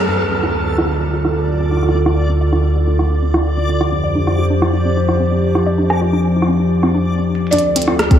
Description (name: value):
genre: IDM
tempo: 129 BPM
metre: 4/4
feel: straight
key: D minor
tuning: A4 = 442 Hz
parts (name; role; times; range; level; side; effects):
- warbly tape-like pad; sustained chords; 0.0-8.2 s; D2 to C5; -15 LUFS; equal; chorus, built-in reverb, vintage 12-bit sampler grit
- backwards swelling texture; texture; 0.0-7.1 s; D5; -27 LUFS; left 1 dB; built-in reverb, lush chorus
- warbly dusty pluck; arpeggios; 0.1-8.2 s; C4 to D5; -24 LUFS; left 1 dB; chorus, analog delay
- glitchy drum kit; drums; 0.4-8.2 s; hi-hat, rim click; -20 LUFS; right 1 dB; low-pass filter on hats, low-pass filter on snare, low-pass filter on room, analog delay
- felt-muted upright piano; melody; 7.5-8.2 s; D5; -17 LUFS; right 1 dB; analog delay
- electronic kick drum; drums; 8.1-8.2 s; none; -7 LUFS; equal; none
room: wet cathedral reverb, RT60 6.0 s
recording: dreamy mix soaked in reverb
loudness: -14 LUFS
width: side -9 dB against mid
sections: 0.1-7.5 A section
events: filter sweep on ambient pad 0.1-7.5; filter sweep on synth arpeggio sound 0.1-7.5; stop 7.1-7.5; drum fill 7.3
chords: 0.1 Dm; 3.8 Fsus2; 7.5 Dm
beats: | 0.09 0.55 1.01 1.48 | 1.95 2.41 2.88 3.34 | 3.81 4.27 4.74 5.20 | 5.67 6.13 6.60 7.06 | 7.53 7.99